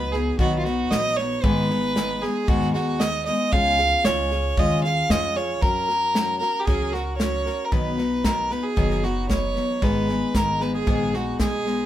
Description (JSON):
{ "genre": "honky-tonk and classic country", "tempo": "114 BPM", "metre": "4/4", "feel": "straight", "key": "B lydian", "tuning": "A4 = 440 Hz", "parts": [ { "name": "clear fiddle", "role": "second line", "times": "0.0-11.9 s", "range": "E#4 to E#5", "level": "-24 LUFS", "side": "right 2 dB", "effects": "none" }, { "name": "picked steel-string acoustic guitar", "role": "accompaniment", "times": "0.0-11.9 s", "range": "G#2 to B4", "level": "-26 LUFS", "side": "left 3 dB", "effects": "none" }, { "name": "upright bass", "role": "bass", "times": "0.0-11.8 s", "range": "F#1 to F#2", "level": "-29 LUFS", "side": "equal", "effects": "none" }, { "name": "natural country drum kit", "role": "drums", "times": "0.1-11.7 s", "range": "hi-hat, kick drum, snare drum", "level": "-25 LUFS", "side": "equal", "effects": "none" } ], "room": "light reverb", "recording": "minimal, uncompressed stereo recording", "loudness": "-20 LUFS", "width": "side -12 dB against mid", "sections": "0.0-7.7 A section; 7.7-11.9 B section", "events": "fiddle solo 0.0-7.7, 7.7-11.9", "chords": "0.0 B; 1.4 G#m; 3.5 C#; 5.6 F#; 7.7 B; 9.8 G#m" }